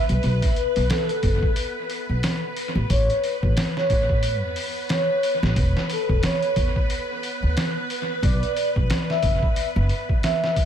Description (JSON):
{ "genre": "trip hop", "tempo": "90 BPM", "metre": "4/4", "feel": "swing 59% on 16ths", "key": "B minor", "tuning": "A4 = 439 Hz", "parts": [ { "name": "pure breathy sine lead", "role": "melody", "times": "0.0-10.7 s", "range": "A4 to E5", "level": "-26 LUFS", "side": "equal", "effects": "wide subtle chorus, tape echo" }, { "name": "string machine, cellos", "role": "sustained chords", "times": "0.0-10.7 s", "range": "B4", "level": "-30 LUFS", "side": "equal", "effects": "phaser, ensemble chorus, vintage 12-bit sampler grit" }, { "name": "upright bass", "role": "bass", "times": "0.1-9.9 s", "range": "E1 to A2", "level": "-23 LUFS", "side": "equal", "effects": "none" }, { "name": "trip hop sampler-style drum kit", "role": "drums", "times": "0.1-10.7 s", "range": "hi-hat, kick drum, snare drum", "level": "-24 LUFS", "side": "equal", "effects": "tape echo" } ], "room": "light reverb", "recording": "echo-heavy mix", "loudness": "-20 LUFS", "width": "side -9 dB against mid", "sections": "0.0-10.7 A section", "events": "none", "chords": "0.0 B5; 2.9 Aadd9; 5.6 E5; 8.2 B5" }